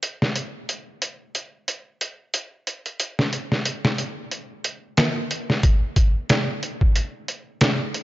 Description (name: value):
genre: trip hop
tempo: 91 BPM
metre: 4/4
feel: swing 57% on 16ths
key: none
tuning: none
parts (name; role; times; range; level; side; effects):
- trip hop sampler-style drum kit; drums; 0.0-8.0 s; hi-hat, kick drum, snare drum; -20 LUFS; equal; none
room: light reverb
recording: nothing above 7.5 kHz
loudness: -22 LUFS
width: side -16 dB against mid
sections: 0.0-5.6 A section; 5.6-8.0 B section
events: none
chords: none